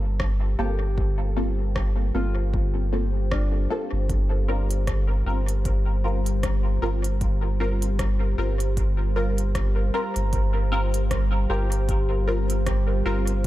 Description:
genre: ambient dub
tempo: 77 BPM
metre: 4/4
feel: swing 57% on 16ths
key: unclear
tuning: A4 = 440 Hz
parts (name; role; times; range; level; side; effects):
- deep dark ambient pad; sustained chords; 0.0-13.5 s; G3 to G5; -32 LUFS; equal; chorus, built-in reverb
- filtered dub chord stab; stabs; 0.0-13.3 s; Bb3 to Bb4; -31 LUFS; left 1 dB; phaser, ensemble chorus, dub echo
- warm sub bass; bass; 0.0-13.5 s; G1; -24 LUFS; equal; none
- electronic kick drum; drums; 0.2-13.5 s; none; -28 LUFS; equal; none
- organic electronic drum kit; drums; 0.2-13.5 s; hi-hat, rim click; -35 LUFS; equal; overdrive, dub echo
- Celtic harp; arpeggios; 0.6-13.5 s; D4 to Bb5; -35 LUFS; left 1 dB; tape echo
room: little or no reverb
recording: none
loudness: -21 LUFS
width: side -15 dB against mid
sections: 0.0-13.5 A section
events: fade-in on ambient pad 0.0-13.5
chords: 0.0 Gm11; 4.1 Fsus4/G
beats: 0.20 | 0.98 1.76 2.54 3.31 | 4.09 4.87 5.65 6.43 | 7.21 7.99 8.77 9.55 | 10.33 11.11 11.89 12.66 | 13.45

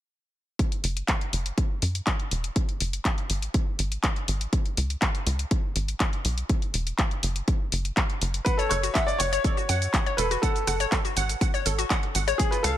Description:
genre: progressive house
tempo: 122 BPM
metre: 4/4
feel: straight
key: F# minor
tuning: A4 = 440 Hz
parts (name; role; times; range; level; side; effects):
- electronic kick drum; drums; 0.6-12.5 s; none; -26 LUFS; equal; overdrive
- house drum kit; drums; 0.6-12.7 s; handclaps, hi-hat, rim click, shaker; -29 LUFS; equal; none
- tight sequencer bass; bass; 0.8-12.8 s; E1 to F#2; -27 LUFS; equal; sidechain pumping
- clear baby grand piano; melody; 8.4-12.8 s; G#4 to E5; -28 LUFS; left 1 dB; ping-pong delay
- glassy wavetable pluck; arpeggios; 8.5-12.7 s; E#4 to F#5; -28 LUFS; left 2 dB; chorus, sidechain pumping, ping-pong delay
room: little or no reverb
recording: none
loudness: -24 LUFS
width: side -12 dB against mid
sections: 0.6-12.8 A section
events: none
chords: 0.6 Eadd9 (rootless); 4.5 C#5; 6.5 Esus2; 8.5 F#5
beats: | 0.59 1.08 1.58 2.07 | 2.56 3.05 3.54 4.04 | 4.53 5.02 5.51 6.00 | 6.50 6.99 7.48 7.97 | 8.46 8.95 9.45 9.94 | 10.43 10.92 11.41 11.90 | 12.40

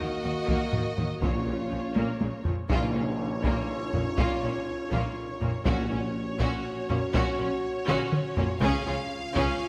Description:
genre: cinematic, epic orchestral film score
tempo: 122 BPM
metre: 3/4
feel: straight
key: Bb minor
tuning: A4 = 439 Hz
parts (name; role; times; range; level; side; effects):
- warm symphonic violin section; melody; 0.0-9.7 s; Db5 to F5; -40 LUFS; equal; none
- warm symphonic violin section; second line; 0.0-9.6 s; Bb3 to Ab4; -39 LUFS; equal; none
- rich symphonic viola section; accompaniment; 0.0-9.6 s; Db3 to Db4; -38 LUFS; equal; none
- mellow French horn section; sustained chords; 0.0-9.7 s; Bb3 to Gb4; -37 LUFS; equal; none
- rich symphonic cello section; bass; 0.0-9.4 s; Bb2 to Eb3; -37 LUFS; equal; none
- warm symphonic double bass section; bass; 0.0-9.4 s; Bb1 to Eb2; -37 LUFS; equal; none
- solo taiko drums; drums; 0.5-9.7 s; none; -34 LUFS; equal; none
- timpani; percussion; 1.2-3.4, 5.7-6.4 s; Bb2; -36 LUFS; equal; none
- tam-tam; percussion; 2.7-4.6 s; none; -41 LUFS; equal; none
room: moderate scoring stage reverb, RT60 1.8 s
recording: none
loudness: -28 LUFS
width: mono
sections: 0.0-2.7 A section; 2.7-9.7 B section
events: drum fill 2.0-2.7, 7.9-8.6; band accent 2.7-3.2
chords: 0.0 Ebm; 1.2 Bbm; 5.7 Gb/Bb; 8.6 Db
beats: 0.24 0.73 | 1.22 1.72 2.21 | 2.70 3.19 3.69 | 4.18 4.67 5.17 | 5.66 6.16 6.65 | 7.14 7.63 8.13 | 8.62 9.11 9.61

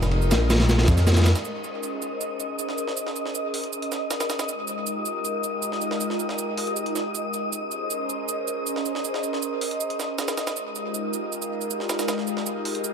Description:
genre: drum and bass, jungle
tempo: 158 BPM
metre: 4/4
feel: straight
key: Bb dorian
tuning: A4 = 443 Hz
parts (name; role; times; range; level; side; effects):
- airy breathy pad; sustained chords; 0.0-12.9 s; Ab3 to Eb5; -29 LUFS; left 1 dB; chorus, phaser
- dark detuned saw bass; bass; 0.0-1.3 s; F1 to F2; -19 LUFS; equal; none
- breakbeat sampler-style drum kit; drums; 0.0-12.9 s; hi-hat, shaker, snare drum; -31 LUFS; right 5 dB; high-pass filter on perc, high-pass filter on snare, high-pass filter on hats, dub echo
- wind-like tuned noise texture; texture; 0.0-12.9 s; Eb5 to Eb6; -32 LUFS; left 1 dB; built-in reverb
- crunchy breakbeat drum kit; drums; 0.1-1.4 s; kick drum, ride cymbal, snare drum; -24 LUFS; equal; none
room: moderate plate reverb, RT60 1.7 s, studio ambience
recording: echo-heavy mix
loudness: -23 LUFS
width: side -6 dB against mid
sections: 0.0-1.5 A section; 1.5-12.9 B section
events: drop 0.0-1.5; filter sweep on analog synth pad 1.5-12.9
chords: 0.0 Fm11; 1.5 Bbm11; 4.5 Fm11; 7.5 Bbm11; 10.6 Fm11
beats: 0.31 0.69 1.07 | 1.45 1.83 2.21 2.59 | 2.97 3.35 3.73 4.11 | 4.49 4.87 5.25 5.63 | 6.01 6.39 6.77 7.15 | 7.53 7.91 8.29 8.67 | 9.05 9.43 9.80 10.19 | 10.56 10.95 11.32 11.70 | 12.08 12.46 12.84

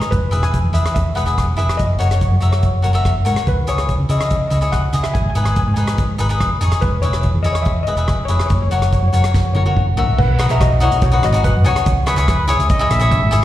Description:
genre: calypso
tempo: 143 BPM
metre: 4/4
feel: straight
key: B major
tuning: A4 = 439 Hz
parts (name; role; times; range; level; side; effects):
- cavaquinho; accompaniment; 0.0-13.4 s; D#4 to E5; -21 LUFS; left 3 dB; slapback echo
- soft-mallet drum kit; drums; 0.0-13.4 s; crash cymbal, hi-hat, kick drum, rim click, snare drum, toms; -20 LUFS; equal; none
- steel pan; melody; 0.1-12.9 s; E4 to G#5; -24 LUFS; left 1 dB; slapback echo
- hollow-body short-scale fingered electric bass; bass; 0.1-13.4 s; E1 to C#3; -17 LUFS; equal; none
- warm trumpet; second line; 12.1-13.4 s; B4 to E5; -20 LUFS; right 3 dB; slapback echo
room: light reverb, studio reverb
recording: live gig heard through the venue's PA, recital hall reverb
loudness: -14 LUFS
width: side -13 dB against mid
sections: 0.0-10.2 A section; 10.2-13.4 B section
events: drum fill 9.3-10.2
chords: 0.1 E; 1.8 F#; 3.5 C#madd9; 5.1 G#m; 6.8 E6; 8.5 F#; 10.2 B; 11.9 C#m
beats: | 0.12 0.54 0.95 1.37 | 1.79 2.21 2.63 3.05 | 3.47 3.89 4.31 4.73 | 5.15 5.57 5.99 6.41 | 6.83 7.25 7.67 8.09 | 8.51 8.93 9.35 9.76 | 10.18 10.60 11.02 11.44 | 11.86 12.28 12.69 13.11

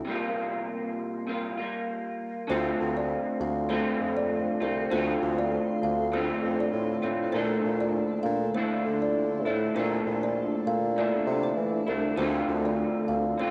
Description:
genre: indie pop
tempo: 99 BPM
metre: 4/4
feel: swing 55% on 16ths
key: unclear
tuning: A4 = 438 Hz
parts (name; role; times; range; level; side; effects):
- electric guitar through a small old amp; accompaniment; 0.0-13.5 s; Bb2 to F4; -31 LUFS; equal; analog chorus, warbly pitch drift, cassette tape
- kalimba; second line; 2.5-13.5 s; D4 to F5; -33 LUFS; equal; subtle chorus, cassette tape, analog delay
- granular cloud pad; sustained chords; 3.3-13.5 s; D4 to D6; -39 LUFS; equal; built-in reverb, cassette tape
- mellow bassoon; bass; 2.5-13.4 s; C2 to E3; -34 LUFS; equal; none
room: moderate studio reverb, RT60 0.6 s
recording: home recording on cassette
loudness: -28 LUFS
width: mono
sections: 0.0-2.5 A section; 2.5-13.5 B section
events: break 0.1-2.5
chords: 0.1 C7sus4; 2.5 Dm7; 7.3 Bbmaj9#11; 12.2 Dm7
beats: | 0.07 0.68 1.28 1.89 | 2.49 3.10 3.71 4.31 | 4.92 5.52 6.13 6.73 | 7.34 7.94 8.55 9.15 | 9.76 10.36 10.97 11.57 | 12.18 12.78 13.39

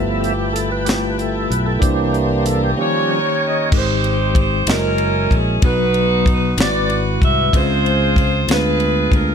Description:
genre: slow gospel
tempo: 63 BPM (dotted quarters)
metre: 6/8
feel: straight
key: unclear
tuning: A4 = 440 Hz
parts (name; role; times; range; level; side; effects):
- mellow tine electric piano; accompaniment; 0.0-9.3 s; G2 to Eb5; -21 LUFS; left 2 dB; medium stereo tremolo
- tonewheel organ; sustained chords; 0.0-3.7 s; E3 to E5; -21 LUFS; right 3 dB; fast rotary speaker, overdrive, chorus vibrato
- warm studio string section; sustained chords; 0.0-3.7 s; D5 to Db6; -28 LUFS; left 3 dB; none
- fingered electric bass; bass; 0.0-9.3 s; Gb1 to D2; -21 LUFS; equal; none
- tight funk drum kit; drums; 0.2-9.3 s; crash cymbal, hi-hat, kick drum, ride cymbal, snare drum; -18 LUFS; equal; none
- clear saxophone section; melody; 2.8-9.3 s; Db4 to E5; -18 LUFS; right 2 dB; slapback echo
room: light reverb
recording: none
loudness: -14 LUFS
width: side -7 dB against mid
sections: 0.0-3.7 A section; 3.7-9.3 B section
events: tonewheel organ solo 0.0-3.7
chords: 0.0 G13; 1.8 C9; 2.8 Eb7; 3.7 Abmaj7; 4.7 Gb13; 5.6 B; 6.6 Ab7alt; 7.5 Dbmaj7; 8.5 Ddim7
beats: 0.86 | 1.82 2.77 | 3.72 4.67 | 5.62 6.57 | 7.52 8.47

